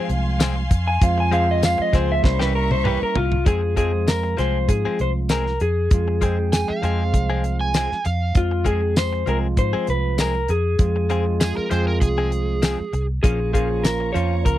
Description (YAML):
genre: straight-eighth soul blues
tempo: 98 BPM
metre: 4/4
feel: swing 54% on 16ths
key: F minor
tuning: A4 = 440 Hz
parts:
  - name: electric guitar through a small old amp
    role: melody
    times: 0.0-14.6 s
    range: F4 to Ab5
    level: -24 LUFS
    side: left 2 dB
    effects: slapback echo
  - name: bell-like tine electric piano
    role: accompaniment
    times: 0.0-14.6 s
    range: F3 to G5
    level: -27 LUFS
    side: right 5 dB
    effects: wide subtle chorus
  - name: rich studio string section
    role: sustained chords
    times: 0.0-3.5, 13.2-14.6 s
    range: E5 to Db6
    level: -33 LUFS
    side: left 2 dB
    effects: none
  - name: direct-recorded clean electric guitar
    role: stabs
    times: 0.0-14.5 s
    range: E3 to Ab4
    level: -28 LUFS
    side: left 7 dB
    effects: none
  - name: vintage muted fingered electric bass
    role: bass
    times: 0.1-14.6 s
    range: Bb1 to Ab2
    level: -23 LUFS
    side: equal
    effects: none
  - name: damped 70s drum kit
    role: drums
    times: 0.1-14.6 s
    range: hi-hat, kick drum, snare drum, tambourine, toms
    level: -19 LUFS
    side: equal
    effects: none
  - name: overdriven slide guitar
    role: second line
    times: 6.5-13.1 s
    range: Ab4 to Ab5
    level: -26 LUFS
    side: right 4 dB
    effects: none
room: little or no reverb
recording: dry, close 1970s-style studio recording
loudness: -18 LUFS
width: side -13 dB against mid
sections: 0.0-3.5 A section; 3.5-14.6 B section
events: clean electric guitar solo 0.0-3.5; drum fill 2.2-3.5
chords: 0.0 Fm; 2.2 C7b9; 3.5 Fm; 13.2 Bbm